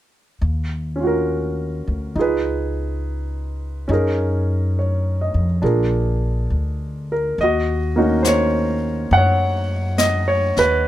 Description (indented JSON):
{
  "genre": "jazz ballad",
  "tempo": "69 BPM",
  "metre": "4/4",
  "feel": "swing 67% on 8ths",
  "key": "Eb minor",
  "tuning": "A4 = 440 Hz",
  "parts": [
    { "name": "upright bass", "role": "bass", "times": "0.4-10.8 s", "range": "Bb1 to Gb2", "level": "-21 LUFS", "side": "equal", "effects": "none" },
    { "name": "warm baby grand piano", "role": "accompaniment", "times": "1.0-10.9 s", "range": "Bb3 to Gb5", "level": "-19 LUFS", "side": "right 1 dB", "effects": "none" },
    { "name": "jazz brush drum kit", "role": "drums", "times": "7.4-10.9 s", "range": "brushed snare drum, hi-hat, snare drum", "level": "-24 LUFS", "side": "left 3 dB", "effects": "none" }
  ],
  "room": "little or no reverb",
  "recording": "none",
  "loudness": "-18 LUFS",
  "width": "side -13 dB against mid",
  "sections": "0.4-7.4 A section; 7.4-10.9 B section",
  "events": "none",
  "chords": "0.4 Ebm7; 2.2 Db7; 3.9 Gb69; 5.6 Bb7; 7.4 Ebm7"
}